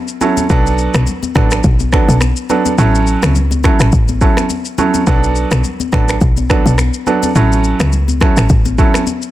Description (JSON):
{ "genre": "afrobeats", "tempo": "105 BPM", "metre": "4/4", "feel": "swing 55% on 16ths", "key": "B minor", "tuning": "A4 = 440 Hz", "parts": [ { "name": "afro-pop drum kit", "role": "drums", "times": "0.1-9.3 s", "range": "finger snaps, kick drum, rim click, shaker", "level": "-15 LUFS", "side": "equal", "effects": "soft clipping on snare" }, { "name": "bright grand piano", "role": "accompaniment", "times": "0.2-9.0 s", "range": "F#3 to A4", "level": "-16 LUFS", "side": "right 4 dB", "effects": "none" }, { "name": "congas", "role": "percussion", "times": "0.2-9.2 s", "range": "none", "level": "-22 LUFS", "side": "left 7 dB", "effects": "none" }, { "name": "woody log drum bass", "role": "bass", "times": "0.5-8.9 s", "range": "A1 to C#2", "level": "-13 LUFS", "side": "equal", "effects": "none" } ], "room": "light reverb, small room ambience", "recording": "dense, heavily limited modern master", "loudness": "-10 LUFS", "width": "side -14 dB against mid", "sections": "0.0-9.3 A section", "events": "none", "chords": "0.0 A6; 0.5 Bm7; 2.8 A6; 5.1 Bm7; 7.4 A6" }